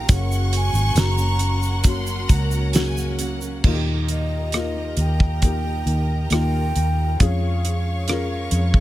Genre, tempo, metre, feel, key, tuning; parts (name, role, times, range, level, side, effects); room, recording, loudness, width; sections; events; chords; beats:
pop ballad; 68 BPM; 4/4; straight; A4 = 440 Hz
breathy mellow alto ocarina; melody; 0.0-8.8 s; Eb5 to Bb5; -30 LUFS; right 1 dB; ping-pong delay
rich studio violin section; second line; 0.0-3.6 s; Gb5 to Db6; -31 LUFS; equal
felt-muted upright piano; accompaniment; 0.0-8.8 s; Bb2 to Bb4; -30 LUFS; left 6 dB
warm symphonic string section; sustained chords; 0.0-8.8 s; Db4 to Db6; -34 LUFS; left 1 dB
fingerpicked plugged-in steel-string acoustic guitar; arpeggios; 0.0-8.8 s; Gb2 to Ab4; -33 LUFS; right 6 dB
vintage muted fingered electric bass; bass; 0.0-8.8 s; Gb1 to F2; -21 LUFS; equal
damped 70s drum kit; drums; 0.1-8.8 s; crash cymbal, hi-hat, kick drum, rim click, snare drum; -19 LUFS; equal
tube shaker; percussion; 0.1-3.6 s; -37 LUFS; right 8 dB
studio ambience; -18 LUFS; side -15 dB against mid
0.0-3.6 A section; 3.6-8.8 B section
0.1 Gb; 3.6 Eb; 7.2 Db/F
| 0.10 0.97 1.85 2.75 | 3.64 4.54 5.43 6.32 | 7.21 8.08